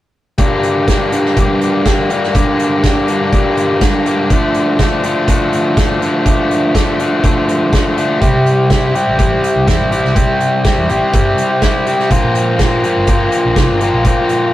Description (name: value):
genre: indie rock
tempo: 123 BPM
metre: 4/4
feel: straight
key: G dorian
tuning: A4 = 438 Hz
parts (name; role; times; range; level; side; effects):
- crunchy overdriven guitar; riff; 0.4-14.5 s; G2 to F4; -13 LUFS; left 1 dB; none
- loose indie drum kit; drums; 0.4-14.4 s; hi-hat, kick drum, snare drum; -15 LUFS; equal; none
- hollow-body short-scale picked electric bass; bass; 8.2-14.1 s; G1 to C3; -18 LUFS; right 1 dB; none
room: light reverb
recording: rough rehearsal-room recording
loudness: -11 LUFS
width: side -14 dB against mid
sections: 0.4-14.5 A section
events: none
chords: 0.4 Gm; 4.3 Dm; 8.2 C; 12.1 Bbsus2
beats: | 0.39 0.88 1.37 1.86 | 2.35 2.84 3.33 3.82 | 4.31 4.80 5.29 5.77 | 6.26 6.75 7.24 7.73 | 8.21 8.70 9.19 9.68 | 10.16 10.65 11.14 11.63 | 12.11 12.60 13.09 13.57 | 14.06